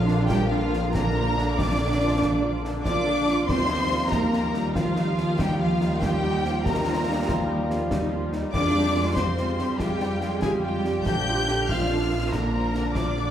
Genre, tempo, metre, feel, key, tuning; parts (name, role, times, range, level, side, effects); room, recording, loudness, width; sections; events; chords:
cinematic, heroic adventure film score; 95 BPM (dotted quarters); 12/8; straight; Bb major; A4 = 438 Hz
warm symphonic violin section; melody; 0.0-13.3 s; F5 to G6; -30 LUFS; left 3 dB
warm symphonic violin section; second line; 0.0-13.3 s; F4 to G5; -32 LUFS; left 1 dB
warm symphonic viola section; accompaniment; 0.0-13.3 s; D3 to G4; -31 LUFS; right 1 dB
warm French horn section; sustained chords; 0.0-13.3 s; F3 to F4; -32 LUFS; left 1 dB
dark symphonic cello section; bass; 0.0-13.3 s; F3 to G4; -28 LUFS; right 1 dB
warm symphonic double bass section; bass; 0.0-13.3 s; Bb1 to F2; -28 LUFS; right 1 dB
concert snare drum, concert bass drum and clash cymbals; drums; 0.1-13.2 s; -30 LUFS; equal
wet recital hall reverb, RT60 1.6 s; recorded in a church or concert hall; -22 LUFS; side -10 dB against mid
0.0-13.3 A section
0.0 Bb; 3.5 Ebadd9; 8.5 Fmadd9; 11.1 Bb